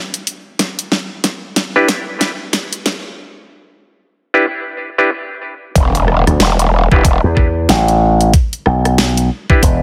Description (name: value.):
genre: glitch hop.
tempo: 93 BPM.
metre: 4/4.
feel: swing 60% on 16ths.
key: E minor.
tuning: A4 = 440 Hz.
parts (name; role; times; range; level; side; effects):
dubstep drum kit; drums; 0.1-9.8 s; hi-hat, rim click, snare drum; -20 LUFS; equal; studio reverb.
electronic kick drum; drums; 0.6-9.8 s; none; -14 LUFS; equal; high-pass filter on kick, studio reverb.
mellow clav; stabs; 1.8-9.6 s; D4 to B4; -18 LUFS; equal; sidechain pumping, digital delay.
growl bass; bass; 5.8-7.2 s; E1; -15 LUFS; equal; chorus, tube saturation.
impact; sound effects; 5.8-8.3 s; none; -26 LUFS; equal; none.
slap bass with an envelope filter; bass; 6.3-9.8 s; E1 to E2; -14 LUFS; equal; none.
room: light reverb.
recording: high-pass filter.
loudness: -14 LUFS.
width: mono.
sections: 0.0-5.8 A section; 5.8-9.8 B section.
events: build-up 0.0-5.8; drum fill 0.0-3.2; break 3.2-5.8; drop 5.8-9.8; impact 5.8-8.3.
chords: 0.0 Em7; 5.8 E5.